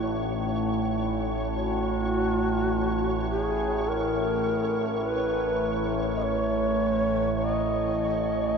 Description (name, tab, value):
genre	ambient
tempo	free time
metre	none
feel	none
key	unclear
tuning	A4 = 440 Hz
part	dark detuned synth bell	arpeggios	0.0-8.6 s	none	barely audible	none	none
part	overtone-sweeping drone	drone	0.0-8.6 s	A1 to A2	-26 LUFS	right 1 dB	chorus, built-in reverb
part	flickering grainy texture	texture	0.0-8.6 s	C#5	-37 LUFS	right 1 dB	built-in reverb
part	breathy mellow long shakuhachi	melody	1.5-8.6 s	F#4 to D#5	-28 LUFS	left 1 dB	ping-pong delay
room	wet huge ambient reverb, RT60 8.0 s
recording	nothing above 7.5 kHz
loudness	-24 LUFS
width	side -6 dB against mid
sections	0.0-8.6 A section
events	none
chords	0.0 F#m (rootless)